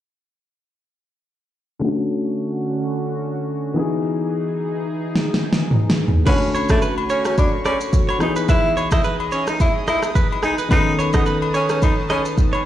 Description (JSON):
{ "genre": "afrobeats", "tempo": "108 BPM", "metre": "4/4", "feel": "swing 55% on 16ths", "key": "E major", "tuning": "A4 = 440 Hz", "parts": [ { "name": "dark concert grand piano", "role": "accompaniment", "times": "1.8-12.7 s", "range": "D3 to A4", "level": "-24 LUFS", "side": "left 2 dB", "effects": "low-pass filter" }, { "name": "lush unison pad", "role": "sustained chords", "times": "1.8-12.7 s", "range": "D3 to D#6", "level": "-28 LUFS", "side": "right 2 dB", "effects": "chorus, low-pass filter" }, { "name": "deep house drum kit", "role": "drums", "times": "5.2-12.5 s", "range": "crash cymbal, kick drum, rim click, shaker, snare drum, toms", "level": "-19 LUFS", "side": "equal", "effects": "vintage 12-bit sampler grit" }, { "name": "breathy tenor saxophone", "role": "melody", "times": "6.3-12.2 s", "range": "A3 to E4", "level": "-22 LUFS", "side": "right 1 dB", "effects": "digital delay" }, { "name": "direct-recorded clean electric guitar", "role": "riff", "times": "6.3-12.6 s", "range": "G#4 to D#5", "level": "-26 LUFS", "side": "right 5 dB", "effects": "digital delay" }, { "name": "agogo bells", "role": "percussion", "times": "6.3-12.7 s", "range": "none", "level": "-28 LUFS", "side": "left 8 dB", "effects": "none" } ], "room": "little or no reverb", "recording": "played on a big sound system in a bare room, stone room reverb", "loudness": "-17 LUFS", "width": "side -12 dB against mid", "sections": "1.8-6.3 A section; 6.3-12.7 B section", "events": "filter sweep 1.8-6.3; drum fill 5.2-6.3", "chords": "1.8 Dmaj7; 3.8 Emaj7; 6.3 Dmaj7; 8.2 Emaj7; 10.7 B7/D#" }